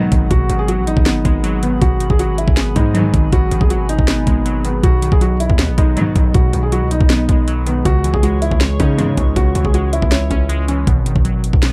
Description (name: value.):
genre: hip hop, trap.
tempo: 159 BPM.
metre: 4/4.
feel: half-time.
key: G# minor.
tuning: A4 = 440 Hz.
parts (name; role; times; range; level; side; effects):
felt-muted upright piano; melody; 0.0-10.8 s; B3 to G#4; -23 LUFS; equal; slapback echo.
glassy digital keys; accompaniment; 0.0-11.7 s; B2 to C#5; -24 LUFS; equal; chorus.
warbly tape-like pad; sustained chords; 0.0-10.8 s; G#4 to C#6; -33 LUFS; equal; chorus, built-in reverb.
dark symphonic string section; stabs; 0.0-0.2, 2.9-3.2, 6.0-6.2, 9.0-9.3 s; G#1 to D#3; -24 LUFS; equal; none.
distorted 808-style bass; bass; 0.1-11.7 s; G#1 to C#3; -21 LUFS; equal; distortion.
trap drum kit; drums; 0.1-11.7 s; hi-hat, kick drum, snare drum; -18 LUFS; equal; none.
room: little or no reverb.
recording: dark, warm production.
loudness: -15 LUFS.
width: mono.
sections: 0.0-10.9 A section.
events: none.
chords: 0.0 G#m7; 4.8 B6; 7.9 C#m; 10.9 G#m7.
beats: | 0.31 0.68 1.06 1.44 | 1.82 2.19 2.57 2.95 | 3.33 3.70 4.08 4.46 | 4.83 5.21 5.59 5.97 | 6.34 6.72 7.10 7.48 | 7.85 8.23 8.61 8.99 | 9.36 9.74 10.12 10.49 | 10.87 11.25 11.63.